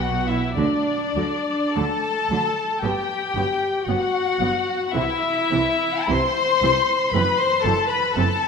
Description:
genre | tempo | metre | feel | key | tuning
classical, slow romantic movement for string orchestra | 48-60 BPM | 4/4 | rubato | unclear | A4 = 440 Hz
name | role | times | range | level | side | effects
muted chamber violin section | melody | 0.0-8.5 s | D5 to C6 | -23 LUFS | left 6 dB | none
muted symphonic violin section | second line | 0.0-8.5 s | D4 to C5 | -23 LUFS | left 2 dB | none
muted symphonic viola section | accompaniment | 0.0-8.2 s | E3 to C4 | -29 LUFS | right 4 dB | none
muted chamber cello section | bass | 0.0-8.2 s | F#2 to D3 | -30 LUFS | right 4 dB | none
muted chamber double bass section | bass | 0.0-8.2 s | F#1 to D2 | -30 LUFS | right 4 dB | none
room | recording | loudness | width
wet concert hall reverb, RT60 1.9 s | none | -19 LUFS | side -5 dB against mid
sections
0.0-8.5 A section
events
none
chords
0.0 B5; 0.6 D; 2.8 Gmaj7; 4.9 C; 7.1 F#m7b5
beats
| 0.57 1.76 2.83 3.87 | 4.94 6.08 7.14 8.15

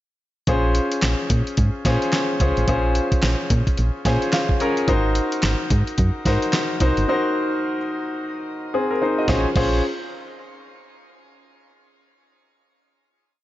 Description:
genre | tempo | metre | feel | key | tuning
R&B, new jack swing | 109 BPM | 4/4 | swing 61% on 16ths | Bb minor | A4 = 440 Hz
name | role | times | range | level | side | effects
clear concert grand piano | accompaniment | 0.5-9.8 s | C4 to Ab5 | -22 LUFS | left 1 dB | shimmer reverb
solid FM bass | bass | 0.5-9.8 s | G1 to Bb2 | -21 LUFS | equal | none
dusty soul sampler-style drum kit | drums | 0.5-9.7 s | crash cymbal, handclaps, hi-hat, kick drum, snare drum | -22 LUFS | equal | gated reverb
room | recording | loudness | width
light reverb | nothing above 7.6 kHz | -18 LUFS | side -15 dB against mid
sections
0.5-9.3 verse; 9.3-11.5 final chord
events
grand piano fill 3.8-4.9; break 7.1-9.3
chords
0.5 Bbm7; 4.9 Ab7; 9.3 Bbm7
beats
| 0.47 1.02 1.57 2.13 | 2.68 3.23 3.78 4.33 | 4.88 5.43 5.98 6.53 | 7.08 7.63 8.18 8.73 | 9.28

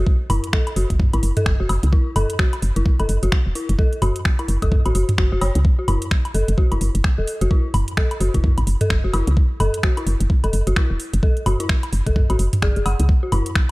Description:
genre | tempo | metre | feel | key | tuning
minimal techno | 129 BPM | 4/4 | swing 60% on 16ths | F# minor | A4 = 440 Hz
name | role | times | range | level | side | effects
woody FM bass | bass | 0.0-13.4 s | E1 to C#2 | -19 LUFS | equal | sidechain pumping
electronic kick drum | drums | 0.1-13.7 s | none | -18 LUFS | equal | studio reverb
dark detuned synth bell | riff | 0.3-13.4 s | E4 to F#5 | -27 LUFS | left 2 dB | chorus, sidechain pumping, digital delay
garage drum kit | drums | 0.3-13.7 s | finger snaps, hi-hat | -27 LUFS | equal | studio reverb
electronic toms and woodblock | percussion | 0.3-13.4 s | none | -25 LUFS | equal | overdrive, studio reverb, digital delay
room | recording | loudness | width
little or no reverb | dark, warm production | -17 LUFS | side -22 dB against mid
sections
0.0-13.7 A section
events
none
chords
none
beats
| 0.07 0.53 1.00 1.46 | 1.93 2.39 2.86 3.32 | 3.79 4.25 4.72 5.18 | 5.65 6.11 6.58 7.04 | 7.51 7.97 8.44 8.90 | 9.37 9.83 10.30 10.76 | 11.23 11.69 12.16 12.62 | 13.09 13.55

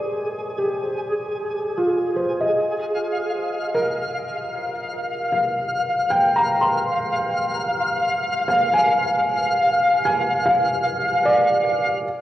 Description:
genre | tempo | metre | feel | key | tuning
ambient | 76 BPM | 3/4 | straight | F dorian | A4 = 445 Hz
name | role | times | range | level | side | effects
felt-muted upright piano | arpeggios | 0.0-12.2 s | F4 to C6 | -21 LUFS | equal | cassette tape, tape echo
twinkling granular texture | texture | 0.0-12.2 s | Ab4 to G5 | -23 LUFS | left 1 dB | built-in reverb, cassette tape
deep rumbling drone | bass | 12.0-12.2 s | none | barely audible | none | none
room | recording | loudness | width
wet spring reverb, RT60 1.4 s, studio reverb | home recording on cassette | -19 LUFS | side -13 dB against mid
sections
0.0-12.0 A section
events
fade-in on felt piano 0.0-12.0; fade-in on synth texture 0.0-12.0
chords
0.0 Fm9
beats
| 0.19 0.98 1.77 | 2.56 3.35 4.14 | 4.93 5.72 6.51 | 7.30 8.09 8.88 | 9.66 10.45 11.24 | 12.03

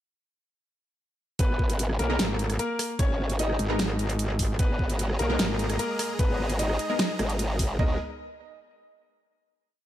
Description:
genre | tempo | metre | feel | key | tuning
heavy wobble dubstep | 150 BPM | 4/4 | half-time | G# minor | A4 = 440 Hz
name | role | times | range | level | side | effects
clear grand piano | melody | 1.4-7.9 s | A#3 to D#5 | -32 LUFS | left 2 dB | ping-pong delay
growl bass | bass | 1.4-8.0 s | G#1 to B1 | -28 LUFS | equal | chorus, overdrive
dubstep drum kit | drums | 1.4-7.9 s | kick drum, toms | -25 LUFS | equal | studio reverb
dubstep drum kit | drums | 1.4-7.7 s | hi-hat, rim click, snare drum | -30 LUFS | right 1 dB | studio reverb
orchestra-hit-like synth stab | stabs | 2.1-7.9 s | G#3 to A#4 | -34 LUFS | equal | built-in reverb, ping-pong delay
metallic wobble bass | bass | 2.2-5.8 s | G#1 | -27 LUFS | equal | distortion, chorus, overdrive
supersaw chords | sustained chords | 4.6-8.0 s | G#3 to A#5 | -36 LUFS | equal | sidechain pumping
room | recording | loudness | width
digital ambience | none | -24 LUFS | side -12 dB against mid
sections
1.4-7.8 drop; 7.8-9.4 final chord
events
drop 1.4-7.8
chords
1.4 G#madd9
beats
| 1.39 1.79 2.19 2.59 | 2.99 3.39 3.79 4.19 | 4.59 4.99 5.39 5.79 | 6.19 6.59 6.99 7.39 | 7.79

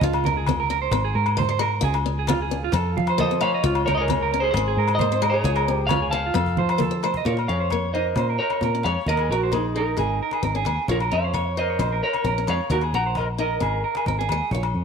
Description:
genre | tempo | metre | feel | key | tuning
highlife guitar band | 132 BPM | 4/4 | straight | Bb minor | A4 = 440 Hz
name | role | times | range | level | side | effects
picked acoustic archtop guitar | accompaniment | 0.0-14.7 s | Ab3 to Ab4 | -30 LUFS | left 11 dB | none
semi-hollow electric guitar | arpeggios | 0.0-14.7 s | F4 to F5 | -27 LUFS | right 10 dB | tape echo
fingered electric bass | bass | 0.0-14.8 s | Ab1 to F3 | -25 LUFS | equal | none
cajon | drums | 0.0-14.8 s | none | -33 LUFS | equal | none
congas | percussion | 0.0-6.9, 14.5-14.8 s | none | -29 LUFS | right 6 dB | none
agogo bells | percussion | 0.1-14.7 s | none | -30 LUFS | left 11 dB | none
semi-hollow electric guitar | melody | 3.2-14.3 s | Eb4 to Bb5 | -26 LUFS | right 1 dB | tape echo
breathy trumpet | second line | 3.2-14.3 s | Eb4 to Gb5 | -32 LUFS | left 10 dB | none
room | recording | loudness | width
light reverb, studio ambience | 1960s-style stereo with parts hard left and right | -20 LUFS | side -6 dB against mid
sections
0.0-7.3 A section; 7.3-14.8 B section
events
drum fill 7.0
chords
0.0 Db; 0.9 Ab; 1.8 Db; 2.7 F; 3.6 Db; 4.5 Ab; 5.5 Db; 6.4 F; 7.3 Bbm; 9.1 Ebm; 10.0 Absus2; 10.9 Bbm; 12.7 Ebm; 13.6 Absus2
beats
| 0.02 0.48 0.93 1.38 | 1.84 2.29 2.74 3.19 | 3.65 4.10 4.55 5.00 | 5.45 5.90 6.36 6.81 | 7.26 7.71 8.17 8.62 | 9.07 9.53 9.98 10.44 | 10.89 11.34 11.80 12.25 | 12.71 13.16 13.61 14.07 | 14.52

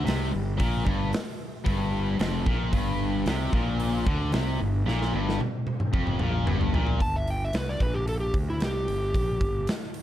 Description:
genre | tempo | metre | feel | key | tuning
blues rock power trio and southern rock | 112 BPM | 4/4 | straight | unclear | A4 = 440 Hz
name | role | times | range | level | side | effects
sludgy distorted guitar | riff | 0.0-7.0 s | F2 to D3 | -28 LUFS | left 2 dB | overdrive
fuzz fingered electric bass | bass | 0.0-9.7 s | F1 to D2 | -29 LUFS | equal | overdrive
big rock drum kit | drums | 0.1-10.0 s | hi-hat, kick drum, snare drum, toms | -28 LUFS | equal | none
overdriven slide guitar | melody | 7.0-9.7 s | E4 to A5 | -30 LUFS | equal | plate reverb
room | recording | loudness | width
light reverb | none | -24 LUFS | side -12 dB against mid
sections
0.0-7.0 A section; 7.0-10.0 B section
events
drum fill 4.9-7.0; electric slide guitar solo 7.0-10.0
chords
0.0 G5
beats
0.06 | 0.60 1.13 1.67 2.20 | 2.73 3.27 3.80 4.33 | 4.87 5.40 5.93 6.47 | 7.00 7.54 8.07 8.61 | 9.14 9.67

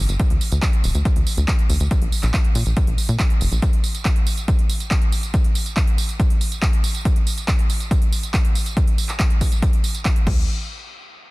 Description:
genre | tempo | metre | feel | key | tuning
uplifting trance | 140 BPM | 4/4 | straight | unclear | A4 = 437 Hz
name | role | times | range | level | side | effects
tight sequencer bass | bass | 0.0-3.6, 10.3-10.5 s | D1 to Bb2 | -20 LUFS | equal | sidechain pumping
big-room dance drum kit | drums | 0.1-10.4 s | crash cymbal, handclaps, hi-hat, tambourine | -27 LUFS | right 2 dB | overdrive
electronic kick drum | drums | 0.2-10.4 s | none | -18 LUFS | equal | overdrive
room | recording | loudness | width
little or no reverb | dense, heavily limited modern master | -17 LUFS | side -22 dB against mid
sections
0.0-10.5 A section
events
none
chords
none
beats
| 0.20 0.62 1.05 1.48 | 1.91 2.34 2.77 3.20 | 3.62 4.05 4.48 4.91 | 5.34 5.77 6.20 6.62 | 7.05 7.48 7.91 8.34 | 8.77 9.20 9.62 10.05

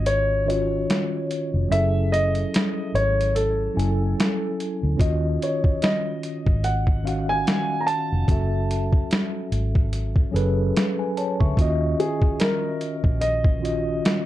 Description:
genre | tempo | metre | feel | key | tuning
lo-fi hip hop | 73 BPM | 4/4 | swing 58% on 16ths | Eb minor | A4 = 440 Hz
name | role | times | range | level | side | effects
dark upright piano | melody | 0.0-14.3 s | Ab4 to Bb5 | -26 LUFS | equal | low-pass filter
mellow tine electric piano | accompaniment | 0.0-14.3 s | Eb3 to Db6 | -26 LUFS | equal | medium stereo tremolo, cassette tape, low-pass filter
vintage muted fingered electric bass | bass | 0.0-14.0 s | F1 to Eb2 | -24 LUFS | equal | none
boom bap sampler-style drum kit | drums | 0.1-14.3 s | hi-hat, kick drum, snare drum | -22 LUFS | equal | none
room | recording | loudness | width
moderate small room reverb, RT60 0.5 s | dark, warm production | -20 LUFS | side -14 dB against mid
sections
0.0-14.3 A section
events
break 0.0-5.0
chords
0.0 Ebm7; 1.7 Gbm7; 5.0 Ebm7; 8.3 Gbm7; 11.6 Ebm7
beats
0.06 0.89 | 1.71 2.53 3.35 4.17 | 4.99 5.82 6.64 7.46 | 8.28 9.10 9.93 10.75 | 11.57 12.39 13.21 14.04

